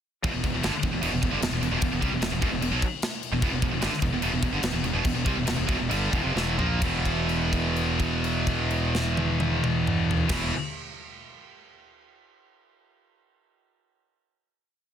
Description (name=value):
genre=heavy metal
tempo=127-151 BPM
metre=4/4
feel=straight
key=E minor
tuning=A4 = 440 Hz
part: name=scooped high-gain guitar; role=riff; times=0.2-10.5 s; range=E2 to A#3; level=-30 LUFS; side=left 9 dB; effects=distortion
part: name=scooped high-gain guitar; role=riff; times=0.2-10.5 s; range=E2 to A#3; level=-32 LUFS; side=left 1 dB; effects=distortion
part: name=tight distorted guitar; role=riff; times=0.2-10.5 s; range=E2 to A#3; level=-29 LUFS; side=right 10 dB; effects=distortion
part: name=fuzz fingered electric bass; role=bass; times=0.2-10.5 s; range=E1 to C2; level=-30 LUFS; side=equal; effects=overdrive
part: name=tight metal drum kit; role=drums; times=0.2-10.4 s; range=crash cymbal, kick drum, snare drum, toms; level=-30 LUFS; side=equal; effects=none
room=little or no reverb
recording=dense, heavily limited modern master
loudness=-23 LUFS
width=side -9 dB against mid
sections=0.2-6.8 riff; 6.8-10.6 final chord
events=slowing down 3.4-6.8; drum fill 6.4-6.8; held note 6.8-10.3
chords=0.2 Em; 6.8 E5